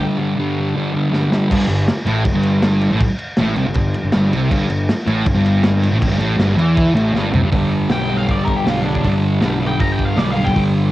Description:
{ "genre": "garage rock duo or trio", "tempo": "159 BPM", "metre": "4/4", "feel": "straight", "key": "G major", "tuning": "A4 = 440 Hz", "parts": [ { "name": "thick fuzz guitar", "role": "riff", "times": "0.0-10.9 s", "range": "G2 to G3", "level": "-17 LUFS", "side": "equal", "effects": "distortion, cassette tape" }, { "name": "crunchy breakbeat drum kit", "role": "drums", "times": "1.1-10.6 s", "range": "crash cymbal, hi-hat, kick drum, snare drum, toms", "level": "-21 LUFS", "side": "equal", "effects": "cassette tape" }, { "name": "fuzz picked electric bass", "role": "bass", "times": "1.5-10.9 s", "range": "G1 to E2", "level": "-20 LUFS", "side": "equal", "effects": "overdrive" }, { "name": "octave-fuzz lead guitar", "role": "melody", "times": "7.9-10.6 s", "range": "D4 to Bb5", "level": "-23 LUFS", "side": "left 1 dB", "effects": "distortion, cassette tape" } ], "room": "little or no reverb", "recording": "home recording on cassette", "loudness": "-14 LUFS", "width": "side -16 dB against mid", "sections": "0.0-1.5 A section; 1.5-7.5 B section; 7.5-10.9 C section", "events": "break 0.0-1.5; drum fill 1.1-1.5, 7.1-7.5; lead electric guitar solo 7.5-10.9", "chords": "0.0 G5; 1.5 Gsus2; 7.5 G", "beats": "| 0.00 0.37 0.75 1.12 | 1.50 1.88 2.25 2.63 | 3.00 3.38 3.75 4.13 | 4.51 4.88 5.26 5.64 | 6.01 6.39 6.77 7.14 | 7.52 7.90 8.28 8.66 | 9.04 9.41 9.79 10.17 | 10.55" }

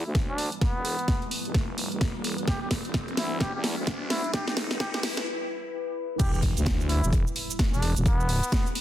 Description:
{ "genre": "bass house", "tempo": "129 BPM", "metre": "4/4", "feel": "swing 60% on 16ths", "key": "E phrygian", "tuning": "A4 = 443 Hz", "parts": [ { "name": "deep dark ambient pad", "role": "sustained chords", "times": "0.4-6.2 s", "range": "G3 to B4", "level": "-37 LUFS", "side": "left 1 dB", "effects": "chorus, built-in reverb, sidechain pumping" }, { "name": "growling FM bass", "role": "bass", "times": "0.0-8.4 s", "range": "E1 to E2", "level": "-30 LUFS", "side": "equal", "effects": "tube saturation, sidechain pumping, high-pass filter" }, { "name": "riser and impact", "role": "sound effects", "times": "0.1-8.1 s", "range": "none", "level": "-37 LUFS", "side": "left 1 dB", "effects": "none" }, { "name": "electronic kick drum", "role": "drums", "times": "0.1-8.6 s", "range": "none", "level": "-26 LUFS", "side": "equal", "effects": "none" }, { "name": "house drum kit", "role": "drums", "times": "0.1-8.8 s", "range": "crash cymbal, hi-hat, shaker, snare drum", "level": "-31 LUFS", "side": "equal", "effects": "soft clipping on snare" }, { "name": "trumpet with cup mute", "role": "melody", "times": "0.3-8.7 s", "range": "B3 to G4", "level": "-34 LUFS", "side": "equal", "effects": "tape echo" }, { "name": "open jazz drum kit", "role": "drums", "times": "6.2-8.8 s", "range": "hi-hat, snare drum", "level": "-43 LUFS", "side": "left 4 dB", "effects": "sidechain pumping on hats, high-pass filter on hats, high-pass filter on snare, high-pass filter on room" } ], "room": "light reverb", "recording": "dense, heavily limited modern master, high-pass filter", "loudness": "-25 LUFS", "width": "side -12 dB against mid", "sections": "0.0-6.2 A section; 6.2-8.8 B section", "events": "build-up 0.0-6.2; drum fill 0.0-5.3; filter sweep on ambient pad 0.0-6.2; riser 0.1-5.3; break 5.3-6.2; drop 6.2-8.8; impact 6.2-8.1", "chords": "0.0 Em; 6.2 E5", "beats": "0.15 | 0.61 1.08 1.54 2.01 | 2.48 2.94 3.41 3.87 | 4.34 4.80 5.27 5.73 | 6.20 6.66 7.13 7.59 | 8.06 8.52" }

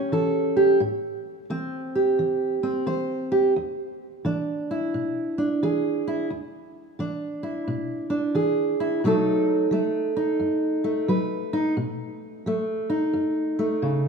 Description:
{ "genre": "blues", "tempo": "88 BPM", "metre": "4/4", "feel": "swing 64% on 8ths", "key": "unclear", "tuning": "A4 = 440 Hz", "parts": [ { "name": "fingerpicked steel-string acoustic guitar", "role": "solo", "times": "0.0-14.1 s", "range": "E2 to C5", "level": "-22 LUFS", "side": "right 1 dB", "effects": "none" } ], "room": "moderate lush hall reverb, RT60 2.8 s", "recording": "rough home demo mix, studio reverb", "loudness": "-22 LUFS", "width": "side -5 dB against mid", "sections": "0.0-14.1 A section", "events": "none", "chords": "0.0 A7; 0.8 Am7; 3.6 E7; 9.0 B7", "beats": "0.13 | 0.82 1.50 2.19 2.87 | 3.56 4.25 4.93 5.62 | 6.30 6.99 7.67 8.36 | 9.04 9.72 10.41 11.09 | 11.78 12.46 13.14 13.82" }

